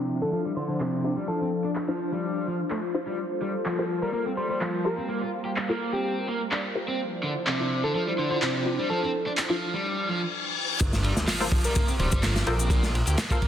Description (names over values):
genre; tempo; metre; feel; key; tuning
breakbeat, breaks; 126 BPM; 4/4; swing 53% on 16ths; G dorian; A4 = 440 Hz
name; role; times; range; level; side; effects
phased analog pad; sustained chords; 0.0-10.3 s; F3 to C5; -31 LUFS; left 1 dB; phaser, chorus, vintage 12-bit sampler grit, sidechain pumping
overdriven electric guitar; riff; 0.0-13.5 s; C3 to G4; -30 LUFS; right 1 dB; low-pass filter, dub echo
filtered dub chord stab; stabs; 0.0-13.4 s; D4 to C5; -33 LUFS; left 2 dB; ensemble chorus, cassette tape, dub echo
soft struck synth lead; melody; 0.2-12.8 s; G4 to C5; -33 LUFS; equal; chorus, AM radio sound, cassette tape, dub echo
electronic handclaps and shaker; drums; 0.8-13.4 s; none; -33 LUFS; equal; none
reverse cymbal and impact; sound effects; 10.0-12.7 s; none; -33 LUFS; left 3 dB; none
phased detuned saw bass; bass; 10.8-13.2 s; D1 to D2; -26 LUFS; equal; phaser
crunchy breakbeat drum kit; drums; 10.8-13.5 s; hi-hat, kick drum, ride cymbal, snare drum; -25 LUFS; equal; none
room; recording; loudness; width
light reverb, studio reverb; dense, heavily limited modern master, low-pass filter; -24 LUFS; side -10 dB against mid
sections
0.0-10.8 A section; 10.8-13.5 B section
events
filter sweep on overdriven electric guitar 0.0-10.8; filter sweep on analog synth pad 0.0-10.8; filter sweep 0.0-10.8; reverse cymbal 10.0-10.8; drop 10.8-13.5; impact 10.8-12.7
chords
0.0 Dm9; 3.2 Gm11; 7.0 Dm9; 10.8 Gm11